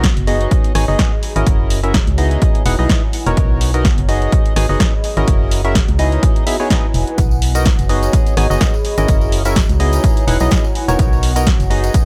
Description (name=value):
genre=piano house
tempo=126 BPM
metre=4/4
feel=swing 55% on 16ths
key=B major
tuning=A4 = 440 Hz
part: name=percussive organ stab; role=riff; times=0.0-12.1 s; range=B3 to G#5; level=-23 LUFS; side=equal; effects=analog chorus, sidechain pumping, dub echo
part: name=organ-like FM bass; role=bass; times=0.0-11.9 s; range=E1 to C#2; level=-19 LUFS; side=equal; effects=sidechain pumping
part: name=electronic kick drum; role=drums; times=0.0-12.0 s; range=none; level=-18 LUFS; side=equal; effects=none
part: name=punchy analog drum machine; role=drums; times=0.0-12.0 s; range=hi-hat, rim click, snare drum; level=-24 LUFS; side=equal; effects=none
part: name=warbly tape-like pad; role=texture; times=0.0-12.1 s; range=B3 to B5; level=-28 LUFS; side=equal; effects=chorus, built-in reverb, sidechain pumping
part: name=tambourine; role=percussion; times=7.2-12.0 s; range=none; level=-34 LUFS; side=equal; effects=dub echo
room=digital ambience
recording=echo-heavy mix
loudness=-15 LUFS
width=mono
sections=0.0-12.1 A section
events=none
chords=0.0 B; 0.5 F#7; 2.4 Emaj7; 3.4 Bmaj7; 4.3 F#7; 6.2 Emaj7; 7.2 Bmaj7; 8.1 F#7; 10.0 Emaj7; 11.0 Bmaj7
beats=0.04 0.51 0.99 | 1.47 1.94 2.42 2.90 | 3.37 3.85 4.32 4.80 | 5.28 5.75 6.23 6.71 | 7.18 7.66 8.13 8.61 | 9.09 9.56 10.04 10.51 | 10.99 11.47 11.94